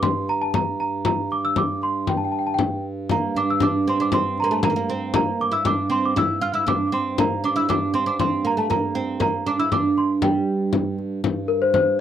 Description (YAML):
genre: medieval dance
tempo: 118 BPM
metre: 2/4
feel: straight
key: G dorian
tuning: A4 = 439 Hz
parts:
  - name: small celesta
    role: melody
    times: 0.0-12.0 s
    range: Bb4 to F6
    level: -22 LUFS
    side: equal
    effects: none
  - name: hand-pumped harmonium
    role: drone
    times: 0.0-12.0 s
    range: G2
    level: -30 LUFS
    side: right 3 dB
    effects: none
  - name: frame drum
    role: percussion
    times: 0.0-12.0 s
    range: none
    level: -24 LUFS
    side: left 5 dB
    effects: none
  - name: oud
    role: second line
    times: 3.1-10.9 s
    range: G3 to F4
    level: -24 LUFS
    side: right 4 dB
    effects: none
room: light reverb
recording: dry, close 1970s-style studio recording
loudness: -19 LUFS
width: side -10 dB against mid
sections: 0.0-3.1 A section; 3.1-11.2 A section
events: none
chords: none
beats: | 0.03 0.54 | 1.06 1.57 | 2.08 2.59 | 3.10 3.61 | 4.12 4.63 | 5.14 5.66 | 6.16 6.67 | 7.18 7.69 | 8.20 8.71 | 9.21 9.72 | 10.23 10.73 | 11.24 11.75